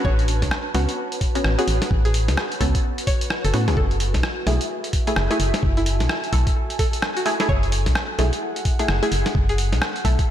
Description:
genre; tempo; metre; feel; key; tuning
UK garage, two-step garage; 129 BPM; 4/4; swing 61% on 16ths; F# minor; A4 = 439 Hz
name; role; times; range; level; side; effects
string-like resonator pluck; melody; 0.0-9.7 s; E4 to C#5; -30 LUFS; equal; chorus, cassette tape, diffuse ambient delay
punchy chord stab; stabs; 0.0-10.2 s; A3 to A4; -26 LUFS; equal; chorus, ping-pong delay
organ-like FM bass; bass; 0.0-10.2 s; F#1 to A2; -21 LUFS; equal; none
electronic kick drum; drums; 0.0-10.3 s; none; -22 LUFS; equal; none
warbly tape-like pad; texture; 0.0-10.3 s; F#4 to A5; -31 LUFS; equal; chorus, built-in reverb, sidechain pumping
boom bap sampler-style drum kit; drums; 0.2-10.3 s; hi-hat, rim click, snare drum; -26 LUFS; equal; none
room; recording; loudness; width
light reverb; none; -19 LUFS; side -11 dB against mid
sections
0.0-10.3 A section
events
none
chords
0.0 A69; 3.8 F#m9

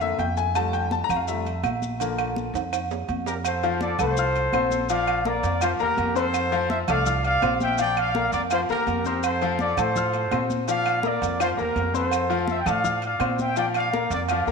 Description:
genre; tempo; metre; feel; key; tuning
latin, salsa; 166 BPM; 4/4; straight; F major; A4 = 440 Hz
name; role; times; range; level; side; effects
clear grand piano; accompaniment; 0.0-14.5 s; D3 to F6; -26 LUFS; left 8 dB; none
upright bass; bass; 0.0-14.5 s; Bb1 to Bb2; -30 LUFS; right 2 dB; none
congas; percussion; 0.0-14.5 s; none; -34 LUFS; right 1 dB; none
maracas; percussion; 0.0-14.5 s; none; -41 LUFS; left 11 dB; none
agogo bells and timbales; percussion; 0.2-14.5 s; none; -29 LUFS; right 12 dB; none
claves; percussion; 0.6-14.5 s; none; -40 LUFS; left 10 dB; none
mellow trumpet section; melody; 3.3-14.5 s; F4 to G5; -25 LUFS; equal; none
room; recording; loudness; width
wet echo chamber reverb, RT60 2.4 s; 1960s-style stereo with parts hard left and right; -21 LUFS; side -5 dB against mid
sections
0.0-3.4 A section; 3.4-14.5 B section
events
grand piano solo 0.0-3.4; drum fill 2.5-3.4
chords
0.0 Bb; 0.6 Fadd9; 2.0 Bb; 3.4 F; 4.9 Bb; 6.3 F; 7.8 Bb; 9.2 F; 10.7 Bb; 12.1 F; 13.6 Bb

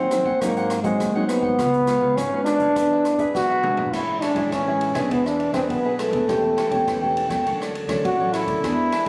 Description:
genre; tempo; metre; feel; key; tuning
samba and choro; 102 BPM; 4/4; straight; A major from 3.9 s; A4 = 440 Hz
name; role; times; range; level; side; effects
warm trombone; melody; 0.0-9.1 s; G#3 to F#4; -23 LUFS; equal; none
cavaquinho; accompaniment; 0.0-9.1 s; D4 to G#5; -32 LUFS; equal; none
nylon-string guitar; accompaniment; 0.0-9.1 s; G#2 to G#4; -29 LUFS; equal; none
upright bass; bass; 0.0-9.1 s; E1 to G#2; -33 LUFS; equal; none
open jazz drum kit; drums; 0.1-9.1 s; crash cymbal, hi-hat, kick drum, ride cymbal, rim click, snare drum, toms; -34 LUFS; equal; none
room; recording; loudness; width
light reverb; recorded on a phone in the room, studio reverb; -22 LUFS; mono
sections
0.0-3.9 A section; 3.9-9.1 B section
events
drum fill 3.3-3.9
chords
0.0 G#7; 1.6 C#7; 2.8 E7; 3.9 Amaj7; 5.1 E7; 6.3 A7/E; 7.5 Dmaj7

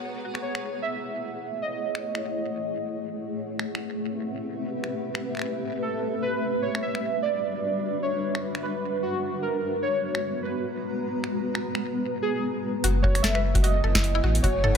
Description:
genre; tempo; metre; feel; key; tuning
IDM; 150 BPM; 4/4; swing 56% on 16ths; unclear; A4 = 441 Hz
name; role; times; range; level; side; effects
granular cloud pad; sustained chords; 0.0-14.8 s; G3 to A#5; -30 LUFS; left 1 dB; built-in reverb
warbly lo-fi synth keys; melody; 0.4-3.0, 5.8-14.8 s; F#4 to E5; -29 LUFS; right 2 dB; chorus, phaser, dub echo
booming analog drum machine; drums; 0.4-14.7 s; finger snaps, hi-hat, snare drum, toms; -30 LUFS; equal; dub echo
mallet-like synth pluck; arpeggios; 12.8-14.7 s; E4 to B4; -32 LUFS; left 2 dB; chorus, analog delay
warm sub bass; bass; 12.8-14.8 s; F#1 to A1; -24 LUFS; equal; none
electronic kick drum; drums; 13.0-14.5 s; none; -24 LUFS; equal; none
room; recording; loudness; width
light reverb, digital ambience; echo-heavy mix; -25 LUFS; side -7 dB against mid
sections
0.0-12.8 A section; 12.8-14.8 B section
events
filter sweep on ambient pad 0.0-12.8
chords
0.0 F#m9; 3.2 Am9; 6.4 Em9; 9.4 G#m9; 12.8 F#m9

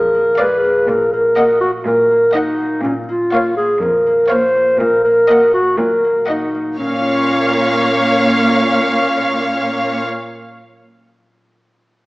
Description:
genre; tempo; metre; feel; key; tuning
cinematic, playful, whimsical film cue; 122 BPM; 4/4; straight; Bb minor; A4 = 437 Hz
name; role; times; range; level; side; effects
dark clarinet; second line; 0.0-10.0 s; Db4 to C5; -14 LUFS; equal; none
concert harp; arpeggios; 0.0-10.7 s; Bb2 to Db5; -26 LUFS; left 1 dB; none
warm studio cello section; bass; 0.0-10.0 s; F2 to Bb2; -23 LUFS; right 1 dB; none
warm studio violin section; melody; 0.4-10.0 s; F5 to Gb5; -20 LUFS; left 1 dB; none
rich studio violin section; second line; 0.4-10.0 s; Db5 to Eb5; -21 LUFS; equal; none
warm studio viola section; accompaniment; 0.4-10.0 s; Ab3 to Bb3; -23 LUFS; equal; none
room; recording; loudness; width
moderate scoring stage reverb, RT60 1.6 s; small speaker sound; -12 LUFS; side -21 dB against mid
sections
0.0-6.8 A section; 6.8-10.8 B section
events
none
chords
0.0 Bb7; 0.9 Ebm/Bb; 2.8 Bbm; 4.8 Ebm/Bb; 6.8 Bbm

